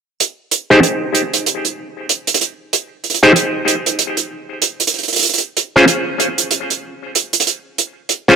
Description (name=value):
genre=glitch hop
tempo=95 BPM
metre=4/4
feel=swing 58% on 16ths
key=unclear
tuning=A4 = 440 Hz
part: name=hi-hat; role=drums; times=0.2-8.2 s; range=none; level=-14 LUFS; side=right 5 dB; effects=none
part: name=auto-wah clav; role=stabs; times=0.7-8.4 s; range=Db4 to C5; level=-13 LUFS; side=equal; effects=overdrive, low-pass filter, digital delay
room=wet plate reverb, RT60 2.8 s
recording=none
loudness=-13 LUFS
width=side -7 dB against mid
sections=0.2-8.4 A section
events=none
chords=0.2 Ebadd11; 5.3 Dbmaj7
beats=| 0.20 0.84 1.47 2.10 | 2.73 3.36 4.00 4.63 | 5.26 5.89 6.52 7.15 | 7.78